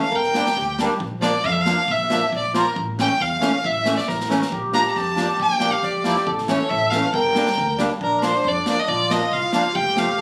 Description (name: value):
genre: klezmer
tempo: 137 BPM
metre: 2/4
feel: straight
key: unclear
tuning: A4 = 441 Hz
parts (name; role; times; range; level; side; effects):
- clear violin; melody; 0.0-10.2 s; Bb4 to Bb5; -24 LUFS; equal; none
- mellow accordion; second line; 0.0-1.0, 4.5-10.2 s; D4 to Bb4; -27 LUFS; equal; none
- upright bass; bass; 0.1-10.2 s; F1 to F2; -33 LUFS; equal; none
- street-band drum kit; drums; 0.1-10.2 s; kick drum, snare drum; -31 LUFS; equal; none
- accordion; accompaniment; 0.3-10.1 s; E3 to F4; -26 LUFS; equal; light tremolo tuning
room: moderate studio reverb, RT60 0.6 s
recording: recorded on a phone in the room, club ambience, compression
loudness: -20 LUFS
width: mono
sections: 0.0-1.0 A section; 1.0-8.0 A section; 8.0-10.2 B section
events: drum fill 4.1-4.5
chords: 0.1 Gm; 1.0 Bb; 2.8 A; 4.5 Bb; 6.3 A; 7.1 Gm; 8.0 Bb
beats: | 0.12 0.56 | 1.00 1.44 | 1.88 2.32 | 2.76 3.20 | 3.64 4.08 | 4.52 4.95 | 5.39 5.83 | 6.26 6.70 | 7.14 7.57 | 8.01 8.44 | 8.88 9.31 | 9.75 10.18